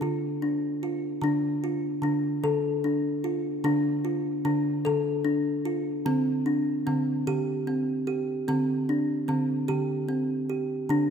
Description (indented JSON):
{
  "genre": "world meditative, meditative tuned percussion",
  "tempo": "50 BPM (dotted quarters)",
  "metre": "6/8",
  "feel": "straight",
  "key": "D minor pentatonic",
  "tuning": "A4 = 438 Hz",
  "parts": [
    { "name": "kalimba", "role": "solo", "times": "0.0-11.1 s", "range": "D3 to A4", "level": "-25 LUFS", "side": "equal", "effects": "none" }
  ],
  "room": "wet concert hall reverb, RT60 2.4 s",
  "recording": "none",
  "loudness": "-25 LUFS",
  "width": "side -7 dB against mid",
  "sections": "0.0-1.2 A section; 1.2-11.1 B section",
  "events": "none",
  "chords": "0.0 Dm; 6.1 C5/D"
}